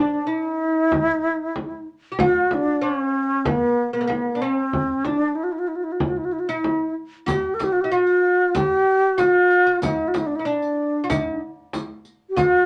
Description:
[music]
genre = Arabic maqam ensemble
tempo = 94 BPM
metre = 4/4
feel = straight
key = unclear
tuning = A4 = 440 Hz
[part]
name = alto flute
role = melody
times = 0.0-12.7 s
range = B3-50c to A4+40c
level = -22 LUFS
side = equal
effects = none
[part]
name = oud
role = second line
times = 0.0-12.7 s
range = A3+40c to G4-40c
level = -29 LUFS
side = equal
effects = none
[part]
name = frame drum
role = percussion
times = 0.9-12.5 s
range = none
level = -28 LUFS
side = equal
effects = none
[part]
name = riq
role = percussion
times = 7.3-12.5 s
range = none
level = -39 LUFS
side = equal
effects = none
[sound]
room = moderate small room reverb, RT60 0.5 s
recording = none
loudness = -21 LUFS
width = mono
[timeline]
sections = 0.0-12.7 A section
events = none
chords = none

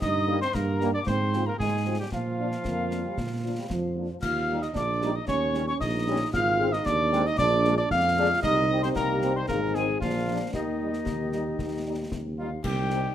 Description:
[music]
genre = military-style march for wind band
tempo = 114 BPM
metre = 2/4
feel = straight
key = Eb major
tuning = A4 = 440 Hz
[part]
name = warm cornet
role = melody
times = 0.0-13.1 s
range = Eb4 to F5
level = -30 LUFS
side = right 1 dB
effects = none
[part]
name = clear euphonium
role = second line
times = 0.0-12.1 s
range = Eb3 to F4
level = -31 LUFS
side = right 4 dB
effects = none
[part]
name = wooden piccolo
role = second line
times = 0.0-13.1 s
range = Eb5 to F6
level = -32 LUFS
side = left 6 dB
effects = none
[part]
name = mellow tuba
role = bass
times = 0.0-13.1 s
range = Ab1 to Bb2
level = -29 LUFS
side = right 2 dB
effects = none
[part]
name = concert snare drum, clash cymbals and concert bass drum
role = drums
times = 0.0-13.0 s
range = none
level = -36 LUFS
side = left 1 dB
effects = none
[part]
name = dark French horn section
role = accompaniment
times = 0.3-13.0 s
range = G3 to Bb4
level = -33 LUFS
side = left 5 dB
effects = none
[part]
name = dark trombone section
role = sustained chords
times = 0.3-13.1 s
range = Eb3 to Eb4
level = -34 LUFS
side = equal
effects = none
[sound]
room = moderate large studio reverb, RT60 1.1 s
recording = none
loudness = -24 LUFS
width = side -10 dB against mid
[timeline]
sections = 0.0-12.6 A section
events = none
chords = 0.0 Eb/G; 1.1 Fm/Ab; 2.1 Bb; 4.2 Eb; 5.3 Eb7; 6.3 Ab; 7.4 Bb7; 8.4 Cm; 9.5 Ab; 10.0 Bb; 10.5 Eb; 12.6 Cm

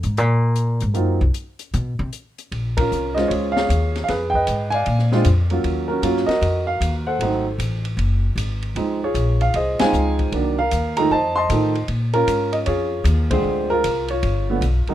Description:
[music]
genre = jazz piano trio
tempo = 154 BPM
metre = 4/4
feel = swing 65% on 8ths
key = Bb minor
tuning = A4 = 440 Hz
[part]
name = upright bass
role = bass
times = 0.0-14.9 s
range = Gb1 to C3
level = -21 LUFS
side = equal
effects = none
[part]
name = open jazz drum kit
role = drums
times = 0.0-14.9 s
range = hi-hat, kick drum, ride cymbal, snare drum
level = -30 LUFS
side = left 2 dB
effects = none
[part]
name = warm upright piano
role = melody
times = 0.9-14.9 s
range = D3 to C6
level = -20 LUFS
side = right 1 dB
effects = none
[sound]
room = light reverb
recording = minimal, uncompressed stereo recording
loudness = -18 LUFS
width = side -12 dB against mid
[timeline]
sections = 0.0-2.5 A section; 2.5-14.9 B section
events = upright bass solo 0.0-2.5; band accent 2.7, 9.7, 13.3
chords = 0.0 Bb7(no3); 1.0 C(b5, no3); 2.5 Bbm7; 4.1 Fm7b5; 4.9 Bb7; 5.6 Ebm9; 7.2 Ab7b9; 8.8 Dbmaj9; 10.3 Cm7b5; 11.1 F7; 11.9 Bbm7; 13.4 Dm7b5; 14.2 G7

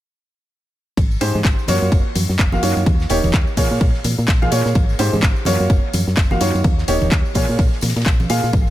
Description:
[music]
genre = piano house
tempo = 127 BPM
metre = 4/4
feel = swing 59% on 16ths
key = Ab major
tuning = A4 = 442 Hz
[part]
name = solid FM bass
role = bass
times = 1.0-8.7 s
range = Eb1 to Bb2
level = -20 LUFS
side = equal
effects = sidechain pumping
[part]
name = damped 70s drum kit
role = drums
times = 1.0-8.7 s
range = hi-hat, ride cymbal, snare drum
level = -33 LUFS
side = left 3 dB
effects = sidechain pumping on cymbals, high-pass filter on cymbals, sidechain pumping on hats, high-pass filter on hats, high-pass filter on snare, high-pass filter on room
[part]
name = electronic kick drum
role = drums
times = 1.0-8.6 s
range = none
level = -16 LUFS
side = equal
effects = overdrive
[part]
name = tambourine and congas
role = percussion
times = 1.0-8.7 s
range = none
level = -27 LUFS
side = right 2 dB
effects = analog delay
[part]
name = ethereal airy pad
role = texture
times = 2.2-8.7 s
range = Eb4 to C6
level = -43 LUFS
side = equal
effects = none
[part]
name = clear upright piano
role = riff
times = 1.2-8.5 s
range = Ab2 to F5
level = -21 LUFS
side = right 1 dB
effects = sidechain pumping, analog delay
[part]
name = house drum kit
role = drums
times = 1.2-8.4 s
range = handclaps, hi-hat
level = -25 LUFS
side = left 2 dB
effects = overdrive, analog delay
[sound]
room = studio reverb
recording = echo-heavy mix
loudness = -15 LUFS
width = side -14 dB against mid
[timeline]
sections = 1.0-8.7 A section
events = none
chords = 1.0 Abmaj7; 1.7 Gbmaj7; 2.9 Eb7; 3.6 Bbm7; 4.8 Abmaj7; 5.5 Gbmaj7; 6.6 Eb7; 7.4 Bbm7

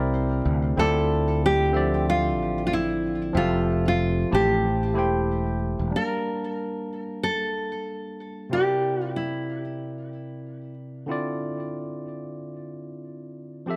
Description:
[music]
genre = sunset chillout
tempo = 93 BPM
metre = 4/4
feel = swing 56% on 16ths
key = D minor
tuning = A4 = 440 Hz
[part]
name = nylon-string guitar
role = melody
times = 0.0-10.7 s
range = E4 to C5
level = -28 LUFS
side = equal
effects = digital delay
[part]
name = barky tine electric piano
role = accompaniment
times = 0.0-13.8 s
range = C3 to A5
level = -31 LUFS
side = equal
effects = low-pass filter, digital delay
[part]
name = sustaining fretless electric bass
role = bass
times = 0.0-5.9 s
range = E1 to D2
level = -28 LUFS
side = equal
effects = lush chorus
[sound]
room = light reverb, studio ambience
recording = none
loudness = -25 LUFS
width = mono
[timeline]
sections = 0.0-5.9 A section; 5.9-13.8 B section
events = filter sweep on tine electric piano 5.9-13.8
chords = 0.0 C7; 0.8 Dm7; 3.4 Fmaj7; 4.6 Am7; 5.9 Gm9; 8.5 C7; 11.1 Dm7

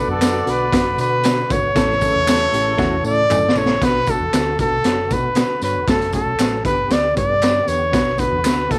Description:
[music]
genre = uptempo 1960s-style soul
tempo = 116 BPM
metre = 4/4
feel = straight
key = B minor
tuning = A4 = 441 Hz
[part]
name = breathy trumpet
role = melody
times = 0.0-8.8 s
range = A4 to D5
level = -21 LUFS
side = equal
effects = none
[part]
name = warm horn section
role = second line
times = 0.0-3.5 s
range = C#3 to D5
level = -30 LUFS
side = equal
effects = none
[part]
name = reed electric piano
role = accompaniment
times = 0.0-8.8 s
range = A3 to C#5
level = -27 LUFS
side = equal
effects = fast tremolo
[part]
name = percussive tonewheel organ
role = sustained chords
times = 0.0-8.8 s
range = C#3 to A4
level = -35 LUFS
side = equal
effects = none
[part]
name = hollow-body short-scale fingered electric bass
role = bass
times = 0.0-8.8 s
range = E#1 to B2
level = -29 LUFS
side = equal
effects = none
[part]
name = raw garage drum kit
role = drums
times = 0.2-8.8 s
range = hi-hat, kick drum, snare drum, toms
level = -23 LUFS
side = equal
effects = none
[part]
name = handclaps and tambourine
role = percussion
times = 0.2-8.8 s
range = none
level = -34 LUFS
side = equal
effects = none
[sound]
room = light reverb, small room reverb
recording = none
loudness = -18 LUFS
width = mono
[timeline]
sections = 0.0-3.8 A section; 3.8-8.8 B section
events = drum fill 2.8-3.8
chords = 0.0 Bm; 1.8 A; 3.8 Bm; 5.9 F#m; 6.6 G; 7.9 Bm

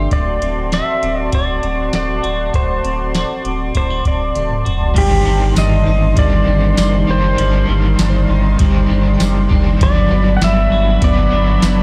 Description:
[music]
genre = dream pop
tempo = 99 BPM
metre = 4/4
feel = straight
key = unclear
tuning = A4 = 444 Hz
[part]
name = warm analog pad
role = sustained chords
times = 0.0-11.8 s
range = Eb3 to C6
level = -25 LUFS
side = equal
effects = chorus
[part]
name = clean electric guitar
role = arpeggios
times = 0.0-11.8 s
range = E3 to G4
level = -24 LUFS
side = equal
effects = subtle chorus, digital delay
[part]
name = saturated sub bass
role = bass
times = 0.0-11.8 s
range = D1 to G1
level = -19 LUFS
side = equal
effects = none
[part]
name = pedal steel guitar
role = melody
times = 0.1-11.8 s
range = G4 to F#5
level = -23 LUFS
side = equal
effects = digital delay
[part]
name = soft vintage rhythm box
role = drums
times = 0.1-11.8 s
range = crash cymbal, hi-hat, kick drum, snare drum, tambourine, toms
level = -19 LUFS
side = equal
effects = none
[part]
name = crunchy overdriven guitar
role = accompaniment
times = 4.9-11.8 s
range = G2 to B4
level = -24 LUFS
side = equal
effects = tremolo, lush chorus
[part]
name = shimmering bell with halo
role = texture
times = 5.3-10.1 s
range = C5 to A5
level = -37 LUFS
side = equal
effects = none
[sound]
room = digital ambience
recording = played on a big sound system in a bare room, large studio reverb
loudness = -15 LUFS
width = mono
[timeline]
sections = 0.0-5.0 A section; 5.0-11.8 B section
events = drum fill 4.4-5.0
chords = 0.1 D7; 5.0 Cmadd9; 9.8 Gmaj7

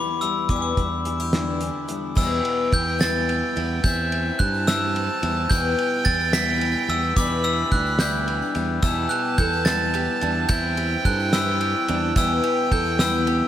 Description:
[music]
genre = indie folk with a building arrangement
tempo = 72 BPM (dotted quarters)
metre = 6/8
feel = straight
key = E minor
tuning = A4 = 440 Hz
[part]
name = glockenspiel with brass mallets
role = melody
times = 0.0-13.5 s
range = D6 to B6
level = -24 LUFS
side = left 1 dB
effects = slapback echo, digital delay
[part]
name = fingerpicked steel-string acoustic guitar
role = accompaniment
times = 0.0-3.8 s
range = E2 to G4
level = -34 LUFS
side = left 3 dB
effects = slapback echo
[part]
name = picked twelve-string acoustic guitar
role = accompaniment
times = 0.0-13.5 s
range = E2 to E4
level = -28 LUFS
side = left 4 dB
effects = none
[part]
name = cloth-damped thuddy drum kit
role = drums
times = 0.2-13.4 s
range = crash cymbal, hi-hat, kick drum, ride cymbal, snare drum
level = -26 LUFS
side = right 1 dB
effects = none
[part]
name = fingered electric bass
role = bass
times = 0.5-13.4 s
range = D2 to G2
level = -26 LUFS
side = right 1 dB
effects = none
[part]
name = clear fiddle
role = second line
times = 2.2-13.5 s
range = E5 to B5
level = -31 LUFS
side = right 6 dB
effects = none
[part]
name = dark brass ensemble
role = sustained chords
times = 2.2-13.5 s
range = D4 to G5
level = -34 LUFS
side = right 2 dB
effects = none
[part]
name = tambourine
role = percussion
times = 2.2-13.1 s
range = none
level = -38 LUFS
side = left 13 dB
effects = none
[part]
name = bowl-back mandolin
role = arpeggios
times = 8.8-13.5 s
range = D4 to B4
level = -31 LUFS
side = right 7 dB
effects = slapback echo
[sound]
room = moderate lush hall reverb, RT60 2.2 s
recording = big arena sound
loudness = -20 LUFS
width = side -11 dB against mid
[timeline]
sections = 0.0-2.2 A section; 2.2-13.5 B section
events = none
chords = 0.5 G/E; 2.2 Em; 3.8 C/E; 5.5 Em; 7.2 G; 8.8 Em; 10.5 C/E; 12.2 Em

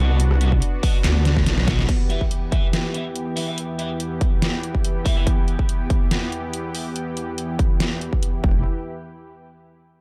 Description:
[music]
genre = heavy wobble dubstep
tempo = 142 BPM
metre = 4/4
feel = swing 53% on 16ths, half-time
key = E minor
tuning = A4 = 440 Hz
[part]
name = lush unison pad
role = sustained chords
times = 0.0-8.6 s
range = E2 to B4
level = -31 LUFS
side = equal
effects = chorus, sidechain pumping
[part]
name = sludgy distorted guitar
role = stabs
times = 0.0-5.2 s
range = B3 to E5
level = -35 LUFS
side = equal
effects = overdrive, delay
[part]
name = wobble bass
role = bass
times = 0.0-1.9, 8.4-8.6 s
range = E1 to D2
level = -20 LUFS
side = equal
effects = chorus, overdrive
[part]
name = dubstep drum kit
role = drums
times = 0.2-8.3 s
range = crash cymbal, handclaps, hi-hat, rim click, snare drum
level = -28 LUFS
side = equal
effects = overdrive
[part]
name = electronic kick drum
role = drums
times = 0.5-8.5 s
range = none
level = -23 LUFS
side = equal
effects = overdrive
[sound]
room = little or no reverb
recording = dark, warm production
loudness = -22 LUFS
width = mono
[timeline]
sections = 0.0-1.9 A section; 1.9-8.6 B section; 8.6-10.0 C section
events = drop 0.0-1.9; drum fill 1.3-1.9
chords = 0.0 Bm; 1.9 Em; 8.6 N.C.

